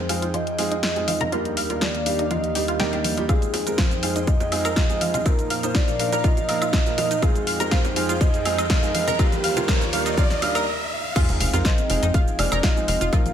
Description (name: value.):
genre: progressive house.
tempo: 122 BPM.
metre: 4/4.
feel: straight.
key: F dorian.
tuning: A4 = 439 Hz.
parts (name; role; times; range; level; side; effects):
soft octave-layered synth lead; melody; 0.0-13.3 s; G4 to F5; -27 LUFS; equal; chorus, tremolo, sidechain pumping, dub echo.
airy breathy pad; sustained chords; 0.0-13.3 s; Eb2 to G5; -30 LUFS; equal; chorus, sidechain pumping.
analog pluck; arpeggios; 0.1-13.2 s; F3 to F5; -28 LUFS; right 1 dB; lush chorus, sidechain pumping, dub echo.
warm baby grand piano; stabs; 0.1-13.3 s; F3 to C5; -29 LUFS; right 4 dB; sidechain pumping, dub echo.
house drum kit; drums; 0.1-13.3 s; crash cymbal, hi-hat, shaker, snare drum, woodblock; -27 LUFS; equal; studio reverb.
congas and bongos; percussion; 1.1-10.5 s; none; -33 LUFS; right 2 dB; overdrive, sidechain pumping on perc, studio reverb.
electronic kick drum; drums; 3.3-13.2 s; none; -20 LUFS; equal; studio reverb.
riser and sub drop; sound effects; 6.4-13.1 s; none; -32 LUFS; left 1 dB; none.
tight sequencer bass; bass; 11.3-13.3 s; F1 to F2; -24 LUFS; equal; sidechain pumping.
room: light reverb, digital ambience.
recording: none.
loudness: -19 LUFS.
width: side -9 dB against mid.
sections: 0.0-11.2 A section; 11.2-13.3 B section.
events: build-up 0.0-11.2; filter sweep on synth pluck 0.0-11.2; riser 6.4-11.2; stop 10.7-11.2; drop 11.2-13.3; impact 11.2-13.1.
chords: 0.0 Fm7; 1.3 Ebmaj7; 3.3 Fm7; 5.3 Bbsus4; 7.2 Fm7; 9.2 Ebmaj7; 11.2 Fm7.